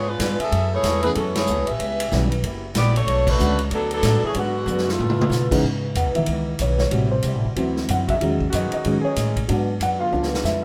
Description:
jazz, big band swing; 187 BPM; 4/4; swing 62% on 8ths; F# minor, C# minor from 5.6 s; A4 = 441 Hz
warm saxophone section; melody; 0.0-5.5 s; D3 to E5; -25 LUFS; equal
picked old ladder-braced acoustic guitar; accompaniment; 0.0-10.6 s; G#2 to A4; -33 LUFS; equal
upright bass; bass; 0.0-10.6 s; F#1 to B2; -26 LUFS; equal
swinging big-band drum kit; drums; 0.2-10.5 s; crash cymbal, hi-hat, kick drum, ride cymbal, snare drum, toms; -30 LUFS; equal
dark baby grand piano; accompaniment; 1.0-10.6 s; B2 to F#5; -26 LUFS; equal
clear trombone section; sustained chords; 8.1-10.4 s; D3 to G#4; -32 LUFS; equal
light reverb; -21 LUFS; mono
0.0-5.6 A section; 5.6-10.6 B section
band accent 1.3, 3.2; drum fill 4.7-5.3, 10.1-10.4; grand piano solo 5.6-10.6
0.0 C#7b9; 0.5 F#m11; 1.8 C#m7b5; 2.4 F#7b9; 3.1 Bm7; 4.3 G#m7b5; 5.0 C#7alt; 5.6 C#m9; 6.9 Am7; 7.6 D9; 8.2 Emaj13; 9.5 G#m7b5; 10.1 C#7b9

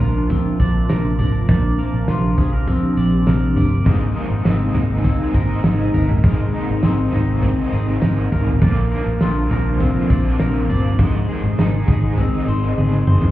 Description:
dream pop; 101 BPM; 4/4; straight; Ab lydian; A4 = 439 Hz
hollow soft pad; sustained chords; 0.0-13.3 s; C3 to Ab4; -22 LUFS; equal; ensemble chorus
electric guitar at the edge of break-up; arpeggios; 0.0-13.3 s; Ab3 to D5; -24 LUFS; left 2 dB; lush chorus, digital delay
vintage muted fingered electric bass; bass; 0.0-13.3 s; G1 to Bb1; -19 LUFS; equal
loose indie drum kit; drums; 0.0-13.3 s; kick drum, snare drum, tambourine, toms; -20 LUFS; equal
raw garage guitar; accompaniment; 3.8-13.3 s; Ab2 to C5; -27 LUFS; right 2 dB; overdrive, tremolo, ensemble chorus
light reverb; heard muffled through a wall, club reverb, EQ; -15 LUFS; side -14 dB against mid
0.0-13.3 A section
drum fill 12.8-13.3
0.0 Bbadd9; 3.9 Abadd9; 8.6 Bbadd9; 11.0 Ab

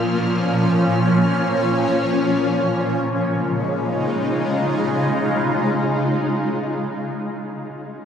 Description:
ambient; free time; Db major; A4 = 439 Hz
shimmering ambient pad; sustained chords; 0.0-6.5 s; Bb2 to F4; -18 LUFS; equal; chorus, built-in reverb, phaser
dark symphonic cello section; bass; 0.0-6.5 s; Bb2 to Db3; -30 LUFS; equal
clear studio violin section; texture; 0.0-2.7 s; F6; -36 LUFS; equal
wet cathedral reverb, RT60 6.1 s; worn, warbling old tape, cassette tape, warbly pitch drift; -18 LUFS; side -8 dB against mid
0.0-2.7 A section; 2.7-5.8 B section
0.0 Bbm; 2.7 Db

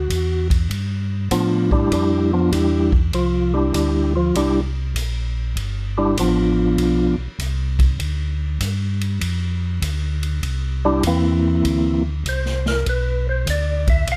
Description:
soul jazz organ trio; 99 BPM; 4/4; swing 66% on 8ths; G mixolydian; A4 = 442 Hz
percussive tonewheel organ; melody; 0.0-7.2, 10.8-14.2 s; E3 to F5; -21 LUFS; equal; fast rotary speaker
mellow tonewheel organ; bass; 0.0-14.2 s; G1 to A2; -24 LUFS; equal; slow rotary speaker
swinging big-band drum kit; drums; 0.1-14.2 s; hi-hat, kick drum, ride cymbal, snare drum; -28 LUFS; equal
light reverb; -20 LUFS; mono
0.7-14.2 A section
tonewheel organ solo 0.7-14.2
0.0 Dadd9 (rootless); 0.7 G13; 3.1 C9; 5.6 G9; 10.4 C9; 12.9 G (rootless)

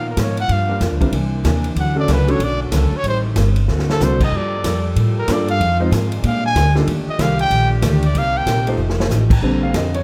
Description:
jazz, big band swing; 188 BPM; 4/4; swing 63% on 8ths; Bb major; A4 = 439 Hz
warm trumpet; melody; 0.0-8.7 s; F#4 to Ab5; -24 LUFS; equal
picked steel-string acoustic guitar; accompaniment; 0.0-10.0 s; G2 to A4; -28 LUFS; equal
warm saxophone section; sustained chords; 0.0-9.4 s; D3 to A#4; -32 LUFS; equal
upright bass; bass; 0.0-10.0 s; F1 to A#2; -20 LUFS; equal
swinging big-band drum kit; drums; 0.2-10.0 s; crash cymbal, hi-hat, kick drum, ride cymbal, snare drum; -25 LUFS; equal
clear baby grand piano; accompaniment; 0.7-10.0 s; D3 to F5; -25 LUFS; equal
light reverb; -17 LUFS; mono
0.0-9.4 A section
trumpet solo 0.0-9.4; drum fill 3.7-4.0, 8.8-9.1
0.5 Gm7; 1.1 C9; 1.8 Dmaj7; 3.0 Am7b5; 3.7 D7; 4.3 Gm9; 5.6 Fm7; 6.2 Bb13; 6.9 Ebmaj9#11; 8.1 Cm7; 8.8 F9; 9.4 Bb69

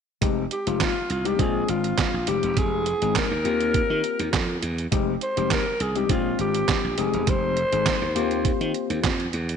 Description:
early-eighties boogie funk; 102 BPM; 4/4; straight; F dorian; A4 = 442 Hz
mellow tine electric piano; accompaniment; 0.2-9.1 s; Ab3 to Ab4; -27 LUFS; left 11 dB; medium stereo tremolo
glassy slap bass; bass; 0.2-9.6 s; E1 to Eb3; -28 LUFS; right 1 dB
detuned 8-bit digital drum machine; drums; 0.2-9.6 s; handclaps, hi-hat, kick drum, snare drum; -26 LUFS; right 4 dB
breathy alto saxophone; melody; 0.5-9.0 s; F4 to C5; -26 LUFS; equal; slapback echo
moderate echo chamber reverb, RT60 1.7 s, digital ambience; 1960s-style stereo, nothing above 10.7 kHz; -21 LUFS; side -7 dB against mid
0.2-9.6 A section
0.2 Fm7; 1.4 Bb7; 2.3 Fm7; 3.5 Eb69; 4.9 Fm7; 6.1 Bb7; 7.0 Fm7; 8.2 Eb69

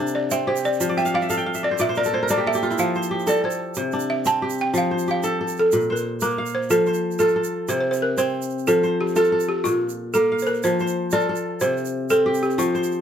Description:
west african traditional, West African string and xylophone music; 122 BPM (dotted quarters); 12/8; straight; F major; A4 = 443 Hz
kora; arpeggios; 0.0-13.0 s; Bb2 to G5; -23 LUFS; left 1 dB
balafon; melody; 0.1-13.0 s; F4 to A5; -22 LUFS; right 1 dB
tube shaker; percussion; 0.1-13.0 s; -34 LUFS; right 10 dB
light reverb; -19 LUFS; side -8 dB against mid
0.0-6.7 A section; 6.7-13.0 B section
balafon solo 0.0-6.7; kora fill 0.9-2.8
0.0 C5; 0.8 F; 1.8 N.C.; 2.8 F; 3.8 C5; 4.7 F; 5.7 Bb5; 6.7 F; 7.7 Bbsus2/C (rootless); 8.7 F; 9.7 Bb5; 10.6 F; 11.6 C5

